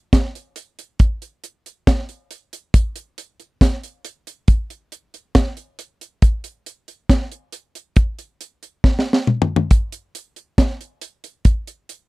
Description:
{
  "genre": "reggae",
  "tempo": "69 BPM",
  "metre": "4/4",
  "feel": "straight",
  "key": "none",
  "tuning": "none",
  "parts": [
    { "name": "deep reggae drum kit", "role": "drums", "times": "0.1-12.1 s", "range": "hi-hat, kick drum, snare drum, toms", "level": "-15 LUFS", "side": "equal", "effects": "none" }
  ],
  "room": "light reverb",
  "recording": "dry, close 1970s-style studio recording",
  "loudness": "-17 LUFS",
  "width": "side -22 dB against mid",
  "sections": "0.0-12.1 A section",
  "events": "drum fill 8.8-9.7",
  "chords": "none"
}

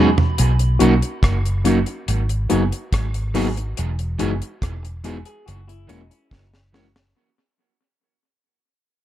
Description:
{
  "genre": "lovers rock reggae",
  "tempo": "71 BPM",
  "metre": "4/4",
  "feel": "straight",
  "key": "B major",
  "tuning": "A4 = 444 Hz",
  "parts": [
    { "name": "mellow tine electric piano", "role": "accompaniment", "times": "0.0-6.9 s", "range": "G#3 to F#4", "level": "-20 LUFS", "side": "left 5 dB", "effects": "slow stereo tremolo" },
    { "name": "electric guitar at the edge of break-up", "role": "stabs", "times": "0.0-6.9 s", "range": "E3 to G#4", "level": "-23 LUFS", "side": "right 6 dB", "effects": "tape echo" },
    { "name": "deep reggae drum kit", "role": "drums", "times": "0.2-7.1 s", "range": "hi-hat, kick drum, rim click, snare drum, toms", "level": "-21 LUFS", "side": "right 1 dB", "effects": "tape echo" },
    { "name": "vintage muted fingered electric bass", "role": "bass", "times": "0.4-7.1 s", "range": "E1 to B1", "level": "-20 LUFS", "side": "equal", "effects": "none" },
    { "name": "electric guitar through a small old amp", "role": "arpeggios", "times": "5.3-7.1 s", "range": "C#4 to G#4", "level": "-52 LUFS", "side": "left 3 dB", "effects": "harmonic tremolo, tape echo" }
  ],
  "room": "studio reverb",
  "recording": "none",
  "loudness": "-17 LUFS",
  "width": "side -12 dB against mid",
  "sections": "0.4-7.2 A section",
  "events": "drum fill 0.0-0.4, 6.3-7.2; fade-out 0.4-7.2",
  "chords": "0.4 Bmaj7; 2.1 G#m7; 3.8 Emaj7; 5.5 F#7"
}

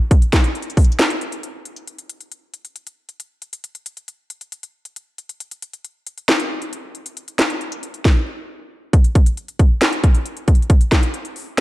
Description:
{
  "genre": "hip hop",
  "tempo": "136 BPM",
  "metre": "4/4",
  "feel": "half-time",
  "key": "none",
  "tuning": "none",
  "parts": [
    { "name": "trap drum kit", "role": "drums", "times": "0.1-11.6 s", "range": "handclaps, hi-hat, kick drum, snare drum", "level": "-16 LUFS", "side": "equal", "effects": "none" }
  ],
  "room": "light reverb, digital ambience",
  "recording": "none",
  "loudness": "-15 LUFS",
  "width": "side -17 dB against mid",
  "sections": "0.0-1.9 A section; 1.9-8.9 B section; 8.9-11.6 C section",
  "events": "break 1.0-1.9",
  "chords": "none"
}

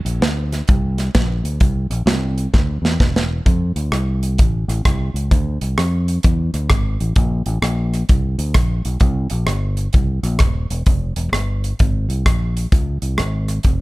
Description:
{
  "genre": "uptempo gospel",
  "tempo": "130 BPM",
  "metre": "4/4",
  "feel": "swing 65% on 8ths",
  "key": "unclear",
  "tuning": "A4 = 442 Hz",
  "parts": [
    { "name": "fingered electric bass", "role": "bass", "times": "0.0-13.8 s", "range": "Eb1 to F2", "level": "-19 LUFS", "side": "equal", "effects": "none" },
    { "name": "modern studio drum kit", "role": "drums", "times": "0.1-13.8 s", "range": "hi-hat, kick drum, rim click, snare drum", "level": "-17 LUFS", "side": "equal", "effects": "none" }
  ],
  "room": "little or no reverb",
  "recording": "dark, warm production",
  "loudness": "-16 LUFS",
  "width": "side -20 dB against mid",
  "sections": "0.0-3.5 A section; 3.5-13.8 B section",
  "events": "drum fill 2.5-3.5",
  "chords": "none"
}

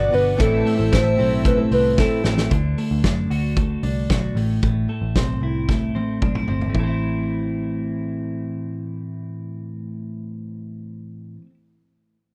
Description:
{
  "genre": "jangly indie pop",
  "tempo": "113 BPM",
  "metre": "4/4",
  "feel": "straight",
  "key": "A dorian",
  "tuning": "A4 = 440 Hz",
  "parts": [
    { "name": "hollow clarinet-like synth lead", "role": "melody", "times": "0.0-2.4 s", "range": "A4 to D5", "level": "-22 LUFS", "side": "equal", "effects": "chorus" },
    { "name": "fingerpicked steel-string acoustic guitar", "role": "accompaniment", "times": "0.0-2.5 s", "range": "A2 to B4", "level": "-29 LUFS", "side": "equal", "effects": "none" },
    { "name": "hollow soft pad", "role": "sustained chords", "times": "0.0-2.5 s", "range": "B4 to E6", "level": "-37 LUFS", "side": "equal", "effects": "chorus" },
    { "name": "twelve-string electric guitar", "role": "arpeggios", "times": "0.0-11.5 s", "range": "A2 to F#4", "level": "-27 LUFS", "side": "equal", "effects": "none" },
    { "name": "vintage muted picked electric bass", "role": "bass", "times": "0.0-11.4 s", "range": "G1 to F#2", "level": "-26 LUFS", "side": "equal", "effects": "none" },
    { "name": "loose indie drum kit", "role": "drums", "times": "0.1-6.9 s", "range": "hi-hat, kick drum, ride cymbal, snare drum, toms", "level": "-25 LUFS", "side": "equal", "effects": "none" }
  ],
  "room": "little or no reverb",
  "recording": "none",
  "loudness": "-21 LUFS",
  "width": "mono",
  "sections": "0.0-2.5 A section; 2.5-6.7 B section; 6.7-11.0 C section",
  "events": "drum fill 2.0-2.5, 5.7-6.7",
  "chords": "0.4 Am; 2.5 D; 4.4 Am"
}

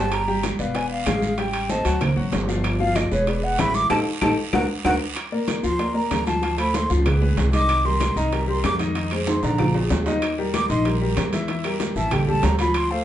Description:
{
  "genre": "Afro-Cuban jazz",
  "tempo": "190 BPM",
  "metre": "4/4",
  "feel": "straight",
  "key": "G minor",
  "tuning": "A4 = 440 Hz",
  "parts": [
    { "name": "breathy mellow concert flute", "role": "melody", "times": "0.0-13.0 s", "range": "C#5 to D6", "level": "-25 LUFS", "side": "right 1 dB", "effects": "none" },
    { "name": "warm grand piano", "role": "accompaniment", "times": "0.0-13.0 s", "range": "D3 to G#5", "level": "-25 LUFS", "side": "left 2 dB", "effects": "none" },
    { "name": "upright bass", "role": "bass", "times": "0.0-13.0 s", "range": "E1 to F2", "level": "-25 LUFS", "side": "equal", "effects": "none" },
    { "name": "bongos", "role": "percussion", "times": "0.1-12.9 s", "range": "none", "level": "-32 LUFS", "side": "left 5 dB", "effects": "none" },
    { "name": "claves", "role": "percussion", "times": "0.1-12.9 s", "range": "none", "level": "-34 LUFS", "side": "left 1 dB", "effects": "none" },
    { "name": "congas", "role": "percussion", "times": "0.1-13.0 s", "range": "none", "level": "-28 LUFS", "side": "equal", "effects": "none" },
    { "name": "guiro", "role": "percussion", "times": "0.1-13.0 s", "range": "none", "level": "-36 LUFS", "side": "right 6 dB", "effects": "none" },
    { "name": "timbales", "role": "percussion", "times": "0.1-12.9 s", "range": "none", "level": "-30 LUFS", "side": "right 4 dB", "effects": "none" }
  ],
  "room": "wet club reverb, RT60 0.6 s",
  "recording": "heard from further back in the room, nothing above 10.7 kHz",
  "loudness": "-19 LUFS",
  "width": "side -12 dB against mid",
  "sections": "0.0-5.2 A section; 5.2-13.0 A section",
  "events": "flute solo 0.0-13.0; band accent 3.9-5.2; drum fill 4.2-5.2, 9.3-10.2",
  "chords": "0.1 Gm; 0.8 E7b9; 1.4 Am7b5; 2.0 D7alt; 2.6 Fm9b5; 3.3 E; 3.9 Gsus2/A; 4.5 Daug; 5.2 Bbadd9; 6.4 Dm7; 7.1 C#sus2; 7.7 Cm7; 9.0 Fm7; 9.6 Bb5; 10.2 Eb; 11.5 Edim; 12.1 Gm9/A"
}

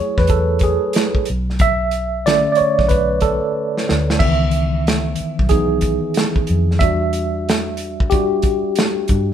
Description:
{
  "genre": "R&B, neo-soul",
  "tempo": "92 BPM",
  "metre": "4/4",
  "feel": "swing 64% on 16ths",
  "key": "unclear",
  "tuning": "A4 = 441 Hz",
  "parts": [
    { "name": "tine electric piano", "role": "accompaniment", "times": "0.0-9.3 s", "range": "D3 to E5", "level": "-18 LUFS", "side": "right 1 dB", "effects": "medium stereo tremolo" },
    { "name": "vintage muted fingered electric bass", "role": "bass", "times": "0.0-9.3 s", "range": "B1 to G2", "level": "-20 LUFS", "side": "equal", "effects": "none" },
    { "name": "warm soul drum kit", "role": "drums", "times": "0.2-9.3 s", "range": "crash cymbal, hi-hat, kick drum, snare drum", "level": "-19 LUFS", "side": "equal", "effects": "none" }
  ],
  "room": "light reverb",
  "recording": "band playing live in one room",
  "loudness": "-15 LUFS",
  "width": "side -9 dB against mid",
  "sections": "0.0-9.3 A section",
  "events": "tine electric piano solo 0.0-9.3; drum fill 3.6-4.2",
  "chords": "0.0 F#m9; 1.3 Bm9; 4.2 C#m9; 6.8 Em9"
}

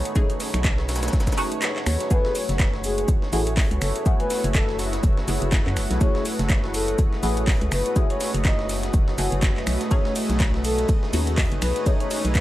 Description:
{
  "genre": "deep house",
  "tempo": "123 BPM",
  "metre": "4/4",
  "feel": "swing 57% on 16ths",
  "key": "F# dorian",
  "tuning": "A4 = 439 Hz",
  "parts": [
    { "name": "deep dark ambient pad", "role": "sustained chords", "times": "0.0-12.4 s", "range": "A3 to C#5", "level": "-30 LUFS", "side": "right 1 dB", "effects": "chorus, built-in reverb, sidechain pumping" },
    { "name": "filtered dub chord stab", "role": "stabs", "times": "0.0-12.4 s", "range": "A3 to G#4", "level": "-30 LUFS", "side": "left 1 dB", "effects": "phaser, lush chorus, sidechain pumping, tape echo" },
    { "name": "granular cloud pad", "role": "texture", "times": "0.0-12.4 s", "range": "F#4 to E5", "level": "-34 LUFS", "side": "left 1 dB", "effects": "built-in reverb, sidechain pumping" },
    { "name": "house drum kit", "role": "drums", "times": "0.1-12.4 s", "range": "finger snaps, handclaps, hi-hat, ride cymbal", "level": "-30 LUFS", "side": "equal", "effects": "small room reverb" },
    { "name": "breakbeat sampler-style drum kit", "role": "drums", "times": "0.2-12.4 s", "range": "hi-hat, shaker, snare drum", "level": "-35 LUFS", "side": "equal", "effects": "sidechain pumping on perc, high-pass filter on perc, small room reverb, high-pass filter on snare, sidechain pumping on hats, high-pass filter on hats, high-pass filter on room" },
    { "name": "electronic kick drum", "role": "drums", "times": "0.2-12.4 s", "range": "none", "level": "-21 LUFS", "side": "equal", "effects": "small room reverb" },
    { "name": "organ-like FM bass", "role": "bass", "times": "0.5-12.4 s", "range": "F#1 to F#2", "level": "-25 LUFS", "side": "equal", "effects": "tube saturation, sidechain pumping" },
    { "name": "breathy flute-like synth lead", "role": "melody", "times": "2.1-12.4 s", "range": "G#4 to D#5", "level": "-29 LUFS", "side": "left 1 dB", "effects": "lush chorus, cassette tape, analog delay" }
  ],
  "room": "little or no reverb",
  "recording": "dry, gritty hardware recording, vinyl crackle",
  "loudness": "-20 LUFS",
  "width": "side -15 dB against mid",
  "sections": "0.0-12.4 A section",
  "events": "kick drops out 1.6-2.1",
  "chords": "0.0 B13; 2.1 F#m9; 9.7 B13"
}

